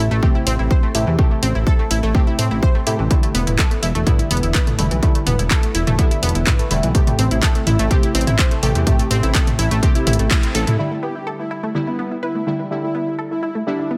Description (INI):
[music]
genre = melodic techno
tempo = 125 BPM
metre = 4/4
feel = straight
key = A minor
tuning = A4 = 439 Hz
[part]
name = analog pluck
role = arpeggios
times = 0.0-14.0 s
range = E3 to C5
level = -26 LUFS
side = equal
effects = chorus, sidechain pumping, dub echo
[part]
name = synth brass stab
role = stabs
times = 0.0-14.0 s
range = C3 to G4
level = -28 LUFS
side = equal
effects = chorus, phaser, sidechain pumping, dub echo
[part]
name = fat analog bass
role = bass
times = 0.0-10.8 s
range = E1 to A2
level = -21 LUFS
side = equal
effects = sidechain pumping
[part]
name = electronic kick drum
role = drums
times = 0.2-10.4 s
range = none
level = -18 LUFS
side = equal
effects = none
[part]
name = house drum kit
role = drums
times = 0.5-10.8 s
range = handclaps, hi-hat, toms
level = -24 LUFS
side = equal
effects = low-pass filter on hats, low-pass filter on toms, low-pass filter on snare, low-pass filter on room
[part]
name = soft supersaw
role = melody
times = 10.8-13.9 s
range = B3 to G4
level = -28 LUFS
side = equal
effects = sidechain pumping, tape echo
[sound]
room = light reverb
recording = none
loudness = -18 LUFS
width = mono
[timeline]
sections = 0.0-10.8 A section; 10.8-14.0 B section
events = band accent 10.3; filter sweep on synth pluck 10.8-14.0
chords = 0.0 Am7; 3.1 Em7; 6.9 Am7; 10.8 Em7